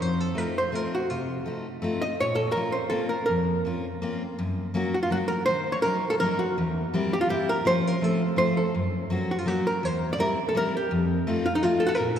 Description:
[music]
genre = musette waltz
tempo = 165 BPM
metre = 3/4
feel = straight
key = unclear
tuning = A4 = 440 Hz
[part]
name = archtop guitar, miked and amplified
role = melody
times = 0.0-12.2 s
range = Eb4 to Eb5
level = -26 LUFS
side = right 1 dB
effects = none
[part]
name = picked steel-string acoustic guitar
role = accompaniment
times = 0.0-12.2 s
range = E2 to Gb4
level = -27 LUFS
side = left 1 dB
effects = none
[sound]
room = wet church reverb, RT60 3.5 s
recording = recorded in a church or concert hall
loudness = -23 LUFS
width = side -9 dB against mid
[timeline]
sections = 0.0-4.4 A section; 4.4-12.2 B section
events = none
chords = 0.0 F7; 2.2 Bbmadd9; 4.4 Gb; 5.5 Ebm7; 6.6 C7/E; 7.7 Bbm/F; 8.0 F; 8.7 Gb; 9.8 C7/E; 10.9 F7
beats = | 0.01 0.38 0.75 | 1.12 1.48 1.84 | 2.21 2.57 2.94 | 3.30 3.67 4.03 | 4.40 4.76 5.13 | 5.49 5.85 6.22 | 6.58 6.94 7.30 | 7.66 8.02 8.38 | 8.75 9.11 9.47 | 9.84 10.20 10.55 | 10.91 11.27 11.63 | 11.99

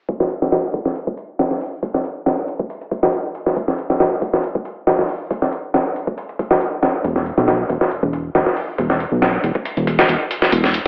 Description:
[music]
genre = breakbeat, breaks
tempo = 138 BPM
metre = 4/4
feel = straight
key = unclear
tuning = A4 = 438 Hz
[part]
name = dusty soul sampler-style drum kit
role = drums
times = 0.1-10.8 s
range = hi-hat, kick drum, snare drum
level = -20 LUFS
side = equal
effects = high-pass filter on hats, high-pass filter on kick, high-pass filter on snare, high-pass filter on room
[part]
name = fat analog bass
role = bass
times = 7.0-10.8 s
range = E1 to B1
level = -22 LUFS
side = equal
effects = none
[sound]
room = light reverb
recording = dry, gritty hardware recording, vinyl crackle, low-pass filter, AM radio sound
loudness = -20 LUFS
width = mono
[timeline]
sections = 0.1-10.9 A section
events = filter sweep 0.1-10.9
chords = none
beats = | 0.09 0.52 0.96 1.39 | 1.83 2.26 2.70 3.13 | 3.57 4.00 4.44 4.87 | 5.31 5.74 6.18 6.61 | 7.04 7.48 7.92 8.35 | 8.79 9.22 9.65 10.09 | 10.52

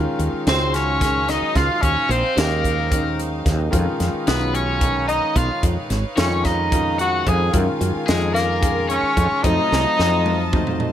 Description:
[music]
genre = electric jazz fusion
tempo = 220 BPM (eighths)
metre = 7/8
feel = straight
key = Eb minor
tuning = A4 = 439 Hz
[part]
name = warm concert grand piano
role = accompaniment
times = 0.0-10.9 s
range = Eb3 to Eb5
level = -26 LUFS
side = equal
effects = plate reverb
[part]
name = rich chamber string section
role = sustained chords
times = 0.0-10.9 s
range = Gb3 to A5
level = -31 LUFS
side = equal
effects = plate reverb
[part]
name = woody fretless electric bass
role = bass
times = 0.0-10.9 s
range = Ab1 to Gb2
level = -22 LUFS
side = equal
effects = lush chorus
[part]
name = crisp fusion drum kit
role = drums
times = 0.2-10.9 s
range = hi-hat, kick drum, snare drum, toms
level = -23 LUFS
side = equal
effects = none
[part]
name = warm tenor saxophone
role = melody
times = 0.5-10.8 s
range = Ab3 to Ab4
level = -22 LUFS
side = right 1 dB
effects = plate reverb
[part]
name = overdriven electric guitar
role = second line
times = 0.5-10.8 s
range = Ab4 to Ab5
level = -26 LUFS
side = left 5 dB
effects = spring reverb
[sound]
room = light reverb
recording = none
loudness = -17 LUFS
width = side -10 dB against mid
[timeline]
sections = 0.0-10.9 A section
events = drum fill 9.7-10.9; grand piano fill 10.5-10.9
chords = 0.0 Ebm9; 3.7 Db9; 7.5 Gbmaj9; 9.4 F7b9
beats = 0.19 0.46 0.74 1.01 1.28 1.55 | 1.82 2.10 2.37 2.64 2.91 3.19 3.46 | 3.73 4.00 4.27 4.55 4.82 5.09 5.36 | 5.63 5.91 6.18 6.45 6.72 7.00 7.27 | 7.54 7.81 8.08 8.36 8.63 8.90 9.17 | 9.44 9.72 9.99 10.26 10.53 10.81

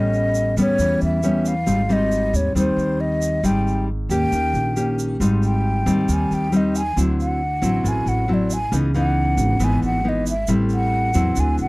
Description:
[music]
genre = bossa nova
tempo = 136 BPM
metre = 4/4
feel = straight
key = unclear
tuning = A4 = 441 Hz
[part]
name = breathy mellow concert flute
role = melody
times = 0.0-11.7 s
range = C5 to Ab5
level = -24 LUFS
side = equal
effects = none
[part]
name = nylon-string guitar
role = accompaniment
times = 0.0-11.7 s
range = Ab2 to G4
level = -20 LUFS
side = left 1 dB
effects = none
[part]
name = upright bass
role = bass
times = 0.0-11.7 s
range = Ab1 to E2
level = -23 LUFS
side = right 1 dB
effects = none
[part]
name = tube shaker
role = percussion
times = 0.1-11.7 s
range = none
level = -35 LUFS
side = right 6 dB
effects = none
[sound]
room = little or no reverb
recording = dry, close 1970s-style studio recording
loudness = -17 LUFS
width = side -22 dB against mid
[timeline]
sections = 0.0-5.2 A section; 5.2-11.7 B section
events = flute solo 5.2-11.7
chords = 0.0 A9; 1.7 Abmaj7; 4.3 Eb7; 5.2 Abmaj7; 7.0 D9; 8.7 Dbm9; 10.5 Am7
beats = 0.36 0.80 1.24 | 1.68 2.12 2.56 3.00 | 3.44 3.88 4.32 4.76 | 5.20 5.64 6.08 6.52 | 6.96 7.40 7.84 8.28 | 8.72 9.16 9.60 10.04 | 10.48 10.92 11.36

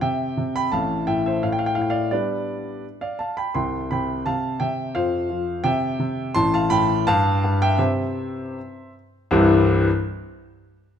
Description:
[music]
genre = classical-period piano sonatina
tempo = 78-87 BPM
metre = 2/4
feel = straight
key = C major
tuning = A4 = 440 Hz
[part]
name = warm grand piano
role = solo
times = 0.0-9.9 s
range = A1 to C6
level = -20 LUFS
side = equal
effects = none
[sound]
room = moderate recital hall reverb, RT60 1.4 s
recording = close, detailed microphones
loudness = -19 LUFS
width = side -8 dB against mid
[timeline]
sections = 0.0-9.3 A section; 9.3-10.8 B section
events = slowing down 5.7-9.3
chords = 0.0 C; 0.7 F/A; 1.4 D5/A; 2.1 G; 3.6 C; 5.0 F5; 5.7 C; 6.4 F/A; 7.1 Fmaj9/G; 7.8 C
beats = 0.02 | 0.72 1.42 | 2.12 2.84 | 3.55 4.26 | 4.96 5.65 | 6.35 7.07 | 7.80 8.56 | 9.32

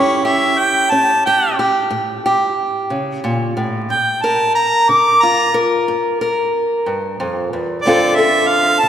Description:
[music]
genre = acoustic country blues, solo or duo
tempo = 61 BPM (dotted quarters)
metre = 12/8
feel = straight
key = unclear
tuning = A4 = 440 Hz
[part]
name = warm harmonica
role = melody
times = 0.0-8.9 s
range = C#5 to D6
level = -14 LUFS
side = right 1 dB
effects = none
[part]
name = fingerpicked steel-string acoustic guitar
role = accompaniment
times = 0.0-8.9 s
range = D2 to Bb4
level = -17 LUFS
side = equal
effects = none
[sound]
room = wet church reverb, RT60 2.9 s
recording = recorded in a church or concert hall, vinyl crackle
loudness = -13 LUFS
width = side -10 dB against mid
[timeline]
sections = 0.0-8.9 A section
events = none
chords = 0.0 A7; 3.9 Gm7; 7.9 Dm7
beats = 0.92 1.92 2.91 | 3.90 4.89 5.88 6.87 | 7.86 8.85

